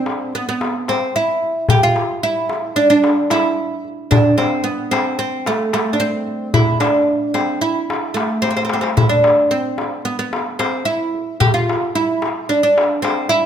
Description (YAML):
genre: Turkish makam ensemble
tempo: 222 BPM (eighths)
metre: 9/8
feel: straight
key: unclear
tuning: A4 = 438 Hz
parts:
  - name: oud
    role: melody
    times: 0.0-13.5 s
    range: A3 to G4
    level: -16 LUFS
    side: right 1 dB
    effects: none
  - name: darbuka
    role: percussion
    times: 0.1-13.2 s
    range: none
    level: -20 LUFS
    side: left 2 dB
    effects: none
room: moderate recital hall reverb, RT60 1.4 s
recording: close, detailed microphones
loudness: -15 LUFS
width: side -9 dB against mid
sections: 0.0-13.5 A section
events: drum fill 8.4-9.0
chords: none